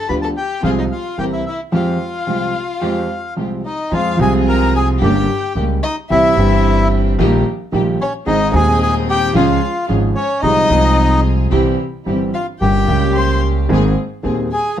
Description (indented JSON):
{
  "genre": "tango",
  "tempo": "110 BPM",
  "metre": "4/4",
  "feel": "rubato",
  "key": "F minor",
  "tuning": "A4 = 440 Hz",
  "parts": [
    { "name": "bandoneon", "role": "melody", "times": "0.0-14.8 s", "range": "Db4 to B5", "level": "-19 LUFS", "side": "left 2 dB", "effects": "plate reverb" },
    { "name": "warm violin", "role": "second line", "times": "0.0-14.8 s", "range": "Eb4 to C6", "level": "-24 LUFS", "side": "left 3 dB", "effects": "none" },
    { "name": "warm concert grand piano", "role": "accompaniment", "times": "0.1-14.8 s", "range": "Eb1 to Ab4", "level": "-17 LUFS", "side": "equal", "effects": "none" },
    { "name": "warm chamber string section", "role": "stabs", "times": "0.1-14.5 s", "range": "Ab3 to Bb4", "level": "-25 LUFS", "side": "equal", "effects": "none" },
    { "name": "upright bass", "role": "bass", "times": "0.1-14.5 s", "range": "G1 to F2", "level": "-18 LUFS", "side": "right 1 dB", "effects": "none" }
  ],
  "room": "moderate studio reverb, RT60 0.8 s",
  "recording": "dark, warm production",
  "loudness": "-13 LUFS",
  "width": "side -10 dB against mid",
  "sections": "0.0-3.9 A section; 3.9-14.8 B section",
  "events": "none",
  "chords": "0.0 G7; 0.6 Fm/C; 1.2 C7; 1.7 Fmadd9; 3.9 Fm; 5.0 Gdim; 6.1 C; 7.2 Eb/Bb; 8.3 Ab; 9.3 Db; 10.4 Fm/C; 11.5 C; 12.6 Gdim; 13.7 Abadd9"
}